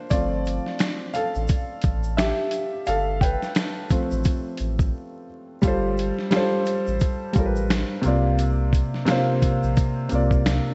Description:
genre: lo-fi hip hop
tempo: 87 BPM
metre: 4/4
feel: swing 60% on 16ths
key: G mixolydian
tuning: A4 = 440 Hz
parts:
  - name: felt-muted upright piano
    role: accompaniment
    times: 0.0-10.7 s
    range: C3 to G5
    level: -26 LUFS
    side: equal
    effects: cassette tape, low-pass filter
  - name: sub bass with octave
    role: bass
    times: 0.1-10.6 s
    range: G1 to C2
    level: -28 LUFS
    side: equal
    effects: none
  - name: dusty soul sampler-style drum kit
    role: drums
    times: 0.1-10.7 s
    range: finger snaps, hi-hat, kick drum, snare drum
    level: -26 LUFS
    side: equal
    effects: none
  - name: tube shaker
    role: percussion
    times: 0.1-10.7 s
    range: none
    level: -52 LUFS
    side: equal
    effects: none
room: moderate lush hall reverb, RT60 2.0 s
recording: dreamy mix soaked in reverb, vinyl crackle, nothing above 7.9 kHz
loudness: -23 LUFS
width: mono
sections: 0.0-5.6 A section; 5.6-10.7 A section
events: felt piano solo 0.0-5.6; break 4.9-5.6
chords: 0.1 G9sus4; 8.0 C9sus4

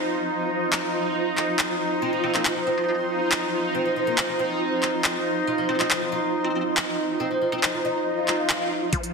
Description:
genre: psychedelic trance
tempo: 139 BPM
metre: 4/4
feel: straight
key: unclear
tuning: A4 = 439 Hz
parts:
  - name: bubbling stepped-filter texture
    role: sustained chords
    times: 0.0-9.1 s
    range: F3 to F4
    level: -27 LUFS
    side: right 1 dB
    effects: chorus, built-in reverb, sidechain pumping
  - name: granular cloud pad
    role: texture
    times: 0.0-9.1 s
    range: F4 to C6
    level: -28 LUFS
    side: equal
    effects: built-in reverb, sidechain pumping
  - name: techno drum kit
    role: drums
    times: 0.7-9.1 s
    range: handclaps, hi-hat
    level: -26 LUFS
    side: left 1 dB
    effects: none
  - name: oud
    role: melody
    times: 2.0-8.8 s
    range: F3 to F4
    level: -28 LUFS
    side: equal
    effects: phaser, sidechain pumping, tape echo
  - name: metallic wobble bass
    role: second line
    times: 2.2-3.0, 5.7-7.7 s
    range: F3 to Eb4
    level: -37 LUFS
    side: right 1 dB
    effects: none
  - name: swell and riser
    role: sound effects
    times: 8.2-9.1 s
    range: none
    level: -29 LUFS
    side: left 2 dB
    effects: none
  - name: wide unison pluck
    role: riff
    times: 8.9-9.0 s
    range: F3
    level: -28 LUFS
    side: left 3 dB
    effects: auto-pan, sidechain pumping
  - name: electronic kick drum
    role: drums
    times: 8.9-9.0 s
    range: none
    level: -27 LUFS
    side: equal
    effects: overdrive
room: wet lush hall reverb, RT60 1.9 s, digital ambience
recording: dense, heavily limited modern master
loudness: -21 LUFS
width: side -4 dB against mid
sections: 0.0-8.9 A section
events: swell 8.2-8.9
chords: 0.0 F5

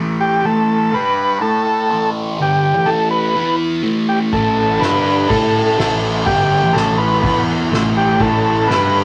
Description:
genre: psychedelic rock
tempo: 124 BPM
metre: 4/4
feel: straight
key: A mixolydian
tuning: A4 = 441 Hz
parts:
  - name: fuzz guitar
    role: riff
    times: 0.0-9.0 s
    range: G2 to A4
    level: -20 LUFS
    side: equal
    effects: distortion, phaser
  - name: overdriven combo organ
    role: melody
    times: 0.2-9.0 s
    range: G4 to B4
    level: -18 LUFS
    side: equal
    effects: none
  - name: string machine, violas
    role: sustained chords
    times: 4.3-9.0 s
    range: D3 to E5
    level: -30 LUFS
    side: equal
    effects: none
  - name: fuzz fingered electric bass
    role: bass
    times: 4.3-9.0 s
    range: G1 to A2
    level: -24 LUFS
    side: equal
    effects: overdrive
  - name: soft-mallet drum kit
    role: drums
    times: 4.3-9.0 s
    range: kick drum, ride cymbal, snare drum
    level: -23 LUFS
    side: equal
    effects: none
room: wet small room reverb, RT60 0.5 s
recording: none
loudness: -16 LUFS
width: mono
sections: 0.0-9.0 A section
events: none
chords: 0.0 A5; 0.9 G5; 1.4 A5; 3.4 E5; 3.8 A; 4.8 G5; 5.3 A; 7.2 E5; 7.7 A

